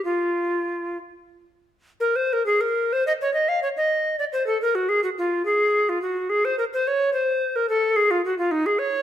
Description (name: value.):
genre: classical, baroque-style fantasia for unaccompanied recorder.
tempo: 56-73 BPM (dotted quarters).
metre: 6/8.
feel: rubato.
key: Bb minor.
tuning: A4 = 439 Hz.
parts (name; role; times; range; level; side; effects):
tenor recorder; solo; 0.0-9.0 s; Eb4 to F5; -20 LUFS; equal; none.
room: wet stone room reverb, RT60 1.4 s.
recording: none.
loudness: -20 LUFS.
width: side -10 dB against mid.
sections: 0.0-2.0 A section; 2.0-9.0 A section.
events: none.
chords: none.